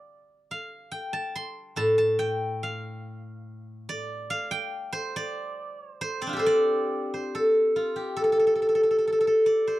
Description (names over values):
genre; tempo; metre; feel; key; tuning
chinese traditional, Chinese solo plucked strings; 70 BPM; 2/4; rubato; D yu mode; A4 = 440 Hz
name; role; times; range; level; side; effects
steel-string zither; solo; 0.0-9.8 s; A2 to C6; -24 LUFS; equal; none
room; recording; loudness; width
light reverb; dry, close 1970s-style studio recording; -23 LUFS; side -16 dB against mid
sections
0.0-6.8 A section; 6.8-9.8 B section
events
none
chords
none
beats
| 0.07 0.94 | 1.80 2.65 | 3.48 4.31 | 5.14 5.98 | 6.85 7.72 | 8.58 9.43